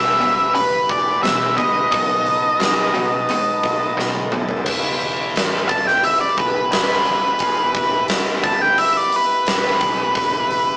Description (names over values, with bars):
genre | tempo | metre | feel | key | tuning
blues rock power trio and southern rock | 87 BPM | 4/4 | straight | E minor | A4 = 440 Hz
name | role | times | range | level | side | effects
octave-fuzz lead guitar | melody | 0.0-10.8 s | B4 to A5 | -17 LUFS | equal | distortion
overdriven tonewheel organ | sustained chords | 0.0-10.8 s | A3 to A5 | -24 LUFS | equal | slow rotary speaker
overdriven electric guitar | riff | 0.0-4.6 s | E2 to G#3 | -26 LUFS | equal | none
vintage muted picked electric bass | bass | 0.0-10.8 s | E1 to D2 | -38 LUFS | equal | none
huge arena drum kit | drums | 0.2-10.7 s | crash cymbal, hi-hat, kick drum, snare drum, toms | -21 LUFS | equal | none
room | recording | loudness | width
moderate studio reverb, RT60 0.5 s | rough rehearsal-room recording, small speaker sound | -15 LUFS | side -27 dB against mid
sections
0.0-4.7 A section; 4.7-10.8 B section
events
drum fill 4.0-4.7; lead electric guitar solo 4.7-10.8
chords
0.0 Em7; 1.9 B7; 4.7 Em